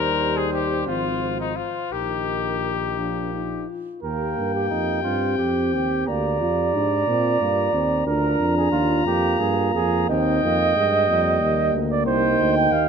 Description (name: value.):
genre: classical, brass quintet.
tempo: 56-63 BPM (dotted quarters).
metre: 6/8.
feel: rubato.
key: Eb major.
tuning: A4 = 440 Hz.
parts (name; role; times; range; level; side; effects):
clear trumpet; melody; 0.0-12.9 s; Eb4 to Bb5; -27 LUFS; left 9 dB; none.
mellow flugelhorn; second line; 0.0-12.9 s; Eb4 to G5; -24 LUFS; right 6 dB; none.
dark French horn; accompaniment; 0.0-12.9 s; Bb3 to G4; -29 LUFS; left 8 dB; none.
warm euphonium; accompaniment; 0.0-12.9 s; Eb3 to F4; -26 LUFS; right 3 dB; none.
clear bass trombone; bass; 0.0-12.9 s; Ab1 to Bb2; -27 LUFS; right 2 dB; none.
room: moderate recital hall reverb, RT60 1.9 s.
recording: close, detailed microphones.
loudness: -19 LUFS.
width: side -6 dB against mid.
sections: 0.0-4.0 A section; 4.0-12.9 B section.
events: none.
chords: 0.0 Eb; 0.9 Fm/Ab; 1.9 Eb/Bb; 3.0 Bb; 4.0 Eb; 6.1 Bb/D; 12.1 Cm.